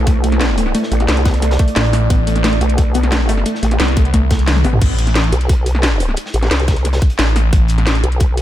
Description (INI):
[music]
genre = dark technical drum and bass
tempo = 177 BPM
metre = 4/4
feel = straight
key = A minor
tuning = A4 = 445 Hz
[part]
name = deep dark ambient pad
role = sustained chords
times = 0.0-4.8 s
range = A3 to D5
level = -25 LUFS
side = right 4 dB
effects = chorus, built-in reverb, sidechain pumping
[part]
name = vowel-sweep wobble bass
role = bass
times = 0.0-8.4 s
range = A1 to C2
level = -15 LUFS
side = equal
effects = chorus
[part]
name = warbly dusty pluck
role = arpeggios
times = 0.1-4.8 s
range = A3 to B3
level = -21 LUFS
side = left 1 dB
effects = chorus, sidechain pumping, diffuse ambient delay
[part]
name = crunchy breakbeat drum kit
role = drums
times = 0.1-8.4 s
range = hi-hat, snare drum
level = -31 LUFS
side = equal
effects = none
[part]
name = drum and bass drum kit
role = drums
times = 0.1-8.4 s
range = crash cymbal, hi-hat, snare drum, toms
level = -20 LUFS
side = equal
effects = none
[part]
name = electronic kick drum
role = drums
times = 0.1-8.3 s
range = none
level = -14 LUFS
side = equal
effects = none
[part]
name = phased detuned saw bass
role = bass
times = 1.8-8.0 s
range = A1 to C2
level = -14 LUFS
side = equal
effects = phaser, overdrive, sidechain pumping
[sound]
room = light reverb, digital ambience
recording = none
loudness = -12 LUFS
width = side -13 dB against mid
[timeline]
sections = 0.0-4.8 A section; 4.8-8.4 A section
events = drop 0.0-4.8, 4.8-8.4; drum fill 4.5-4.8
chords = 0.0 Am